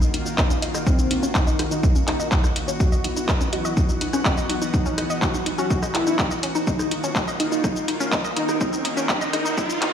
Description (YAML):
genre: melodic techno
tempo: 124 BPM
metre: 4/4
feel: straight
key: unclear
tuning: A4 = 440 Hz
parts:
  - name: lush unison pad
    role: sustained chords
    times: 0.0-9.9 s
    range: Eb3 to F#5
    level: -30 LUFS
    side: equal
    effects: chorus, sidechain pumping
  - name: analog pluck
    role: arpeggios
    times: 0.0-9.9 s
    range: Db4 to Eb5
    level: -28 LUFS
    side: left 1 dB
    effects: chorus, sidechain pumping, ping-pong delay
  - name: techno drum kit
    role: drums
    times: 0.0-9.9 s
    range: handclaps, hi-hat, rim click, shaker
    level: -26 LUFS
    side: left 1 dB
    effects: none
  - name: wide unison lead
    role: melody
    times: 0.4-9.8 s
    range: C4 to F#4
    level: -28 LUFS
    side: equal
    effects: sidechain pumping, dub echo
  - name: electronic kick drum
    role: drums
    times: 0.4-9.7 s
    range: none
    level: -22 LUFS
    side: equal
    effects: none
  - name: riser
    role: sound effects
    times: 7.8-9.9 s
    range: none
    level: -31 LUFS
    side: right 2 dB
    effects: none
room: moderate lush hall reverb, RT60 1.7 s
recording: played on a big sound system in a bare room, stone room reverb, high-pass filter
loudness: -20 LUFS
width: side -8 dB against mid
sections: 0.0-9.9 A section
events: build-up 0.0-9.9; filter sweep on synth arpeggio sound 0.0-9.9; filter sweep 0.0-9.9; riser 7.8-9.9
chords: 0.0 Ebm; 2.8 Esus2; 6.7 Ebm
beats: 0.38 | 0.87 1.35 1.83 2.32 | 2.80 3.29 3.77 4.25 | 4.74 5.22 5.71 6.19 | 6.67 7.16 7.64 8.12 | 8.61 9.09 9.58